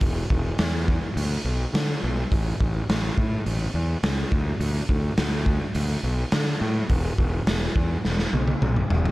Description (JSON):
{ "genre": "classic rock", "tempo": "105 BPM", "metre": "4/4", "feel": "straight", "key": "unclear", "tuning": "A4 = 439 Hz", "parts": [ { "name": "fuzz fingered electric bass", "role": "bass", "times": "0.0-9.1 s", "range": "E1 to D3", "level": "-25 LUFS", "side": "equal", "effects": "overdrive" }, { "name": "raw garage drum kit", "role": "drums", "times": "0.0-9.1 s", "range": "hi-hat, kick drum, snare drum, toms", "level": "-24 LUFS", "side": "equal", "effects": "none" } ], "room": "little or no reverb", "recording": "none", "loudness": "-22 LUFS", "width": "side -18 dB against mid", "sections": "0.0-9.1 A section", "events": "drum fill 8.0-9.1", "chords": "none" }